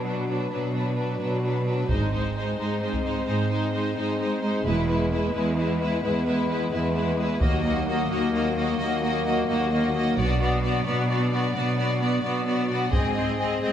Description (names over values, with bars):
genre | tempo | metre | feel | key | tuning
cinematic, epic orchestral film score | 87 BPM (dotted quarters) | 12/8 | straight | unclear | A4 = 440 Hz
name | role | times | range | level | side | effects
clear symphonic violin section | melody | 0.0-13.7 s | B4 to Eb5 | -32 LUFS | left 2 dB | none
warm symphonic violin section | second line | 0.0-13.7 s | D4 to Ab4 | -31 LUFS | left 2 dB | none
clear symphonic viola section | accompaniment | 0.0-13.7 s | F#3 to C4 | -30 LUFS | right 1 dB | none
dark French horn section | sustained chords | 0.0-13.7 s | Gb3 to D4 | -30 LUFS | left 4 dB | none
rich symphonic cello section | bass | 0.0-13.7 s | Eb2 to B2 | -27 LUFS | right 2 dB | none
rich symphonic double bass section | bass | 1.9-13.4 s | E1 to Eb2 | -30 LUFS | right 3 dB | none
taiko ensemble | drums | 1.9-3.1, 7.4-8.3, 12.9-13.7 s | none | -28 LUFS | equal | none
room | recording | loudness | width
moderate scoring stage reverb, RT60 2.1 s | none | -22 LUFS | side -10 dB against mid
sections
0.0-13.7 A section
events
build-up 0.0-13.7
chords
0.0 Bm; 1.9 Ab; 4.7 E; 7.4 Ebm; 10.2 Bm; 12.9 Ab